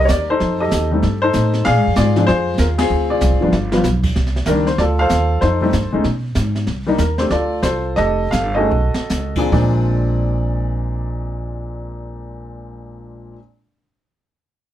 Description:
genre	jazz piano trio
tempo	134-192 BPM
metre	4/4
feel	swing 63% on 8ths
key	Bb mixolydian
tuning	A4 = 441 Hz
part	warm grand piano	melody	0.0-13.4 s	Bb2 to F5	-18 LUFS	left 1 dB	none
part	upright bass	bass	0.0-13.3 s	F1 to Cb3	-19 LUFS	right 1 dB	none
part	jazz brush drum kit	drums	0.1-9.7 s	brushed snare drum, crash cymbal, hi-hat, kick drum, ride cymbal, snare drum	-24 LUFS	right 1 dB	none
room	moderate studio reverb, RT60 0.5 s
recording	heard from further back in the room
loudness	-15 LUFS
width	side -12 dB against mid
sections	0.0-4.2 A section; 4.2-9.5 B section; 9.5-13.1 C section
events	band accent 2.8; drum fill 3.5-3.9, 8.7-9.1; slowing down 6.7-9.5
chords	0.4 F9; 1.7 Bb9 (rootless); 2.9 Dm7b5; 3.5 G7; 4.2 Cm9; 4.8 Dm7; 5.4 F9; 6.0 Abm; 6.7 Cm9; 7.3 Dm7; 8.0 F9; 8.7 B9; 9.5 Bb9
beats	0.10 | 0.41 0.72 1.03 1.35 | 1.66 1.97 2.29 2.60 | 2.91 3.22 3.54 3.85 | 4.16 4.48 4.79 5.10 | 5.41 5.73 6.04 6.35 | 6.67 6.98 7.30 7.63 | 7.97 8.32 8.70 9.10 | 9.53 9.97 10.42 10.87 | 11.31 11.76 12.21 12.66

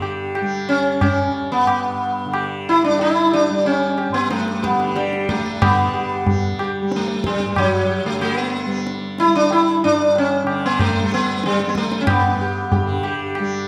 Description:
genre	indian classical, Hindustani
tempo	92 BPM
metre	5/4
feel	straight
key	G raga yaman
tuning	A4 = 440 Hz
part	sitar	melody	0.0-13.7 s	F#3 to G4	-21 LUFS	equal	none
part	tanpura	drone	0.0-13.7 s	G2 to G3	-29 LUFS	equal	none
part	tabla	percussion	0.0-13.6 s	none	-26 LUFS	equal	none
room	wet recital hall reverb, RT60 1.5 s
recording	none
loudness	-19 LUFS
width	mono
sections	0.0-5.6 A section; 5.6-13.7 B section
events	speeding up 0.0-13.7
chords	none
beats	0.36 1.02 1.68 | 2.34 3.00 3.65 4.31 4.96 | 5.61 6.26 6.91 7.56 8.21 | 8.86 9.50 10.15 10.79 11.43 | 12.07 12.71 13.35

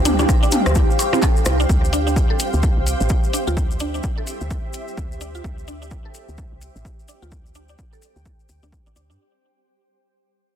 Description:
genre	minimal techno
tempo	128 BPM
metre	4/4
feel	swing 60% on 16ths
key	D minor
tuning	A4 = 440 Hz
part	woody FM bass	bass	0.0-9.2 s	A1 to G2	-23 LUFS	equal	sidechain pumping
part	granular cloud pad	texture	0.0-9.2 s	G4 to G5	-27 LUFS	right 1 dB	built-in reverb, sidechain pumping
part	pulsing gated texture	texture	0.0-9.2 s	G5	-33 LUFS	right 4 dB	chorus, built-in reverb, sidechain pumping
part	mallet-like synth pluck	riff	0.1-9.1 s	C4 to A4	-26 LUFS	right 1 dB	analog chorus, sidechain pumping, digital delay
part	punchy analog drum machine	drums	0.1-9.1 s	handclaps, hi-hat	-29 LUFS	equal	low-pass filter on hats, low-pass filter on snare
part	maracas	percussion	0.1-9.2 s	none	-30 LUFS	left 4 dB	none
part	techno drum kit	percussion	0.1-1.6 s	percussion blips, rim click, toms, woodblock	-21 LUFS	left 1 dB	soft clipping on snare, digital delay
part	electronic kick drum	drums	0.3-8.8 s	none	-20 LUFS	equal	none
room	digital ambience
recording	dense, heavily limited modern master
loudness	-17 LUFS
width	side -9 dB against mid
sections	0.0-9.2 A section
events	fade-out 0.0-9.2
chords	0.0 Dsus4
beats	0.29 0.76 1.23 | 1.69 2.16 2.63 3.10 | 3.57 4.04 4.51 4.97 | 5.44 5.91 6.38 6.85 | 7.32 7.79 8.26 8.72

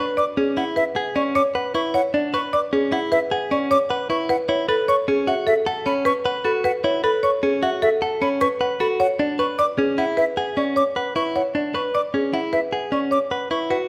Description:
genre	classical, minimalist pattern music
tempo	153 BPM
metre	6/4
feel	straight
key	unclear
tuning	A4 = 440 Hz
part	buzzing marimba with medium mallets	melody	0.0-13.9 s	G#4 to F#5	-25 LUFS	equal	none
part	direct-recorded clean electric guitar	arpeggios	0.0-13.9 s	C#4 to B4	-26 LUFS	equal	none
part	mellow hollow silver concert flute	arpeggios	0.0-13.8 s	E5 to D6	-27 LUFS	equal	none
room	moderate recital hall reverb, RT60 1.6 s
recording	close, detailed microphones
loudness	-21 LUFS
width	mono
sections	0.0-13.7 A section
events	none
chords	0.0 E9; 4.3 F#m11; 9.0 E9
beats	0.37 0.76 1.16 1.55 | 1.94 2.33 2.72 3.12 3.51 3.90 | 4.29 4.68 5.08 5.47 5.86 6.25 | 6.64 7.04 7.43 7.82 8.21 8.61 | 9.00 9.39 9.78 10.17 10.57 10.96 | 11.35 11.74 12.13 12.53 12.92 13.31 | 13.70

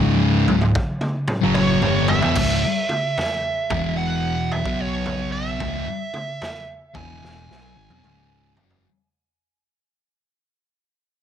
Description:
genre	stoner and doom metal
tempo	74 BPM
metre	4/4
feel	swing 66% on 8ths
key	unclear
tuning	A4 = 442 Hz
part	cranked stack guitar	riff	0.0-2.4 s	C#2 to G3	-25 LUFS	equal	overdrive
part	fuzz guitar	riff	0.0-8.8 s	C#2 to B3	-25 LUFS	right 8 dB	distortion
part	thick fuzz guitar	riff	0.0-8.8 s	C#2 to B3	-24 LUFS	left 7 dB	distortion
part	overdriven picked electric bass	bass	0.0-8.8 s	C#1 to B1	-26 LUFS	equal	none
part	raw garage drum kit	drums	0.5-8.8 s	crash cymbal, kick drum, snare drum, toms	-25 LUFS	equal	none
part	fuzz lead guitar	melody	1.6-8.5 s	C#5 to G#5	-26 LUFS	right 3 dB	wah, distortion, tape echo
room	light reverb, small room ambience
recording	none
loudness	-19 LUFS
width	side -9 dB against mid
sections	0.0-2.4 A section; 2.4-8.8 B section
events	drum fill 0.0-2.4, 7.2-8.8; fade-out 2.4-8.8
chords	0.0 C#m; 3.6 E5; 4.6 B5; 5.6 C#m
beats	0.75 1.56 | 2.36 3.17 3.98 4.79 | 5.60 6.41 7.22 8.04

